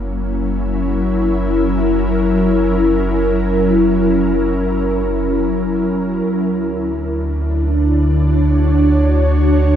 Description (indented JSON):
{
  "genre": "ambient",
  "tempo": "free time",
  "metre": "none",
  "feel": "none",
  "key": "unclear",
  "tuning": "A4 = 441 Hz",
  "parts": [
    { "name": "ethereal airy pad", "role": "sustained chords", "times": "0.0-9.8 s", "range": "D3 to C#5", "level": "-15 LUFS", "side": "equal", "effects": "ensemble chorus, built-in reverb" },
    { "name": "warm sub bass", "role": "bass", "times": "0.0-9.8 s", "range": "F#1 to D2", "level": "-19 LUFS", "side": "equal", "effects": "none" }
  ],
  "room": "wet lush hall reverb, RT60 2.6 s",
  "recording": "dark, warm production",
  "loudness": "-14 LUFS",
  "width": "side -9 dB against mid",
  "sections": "0.0-9.8 A section",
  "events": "none",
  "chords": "0.0 F#7; 6.3 Dmaj7",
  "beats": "free time"
}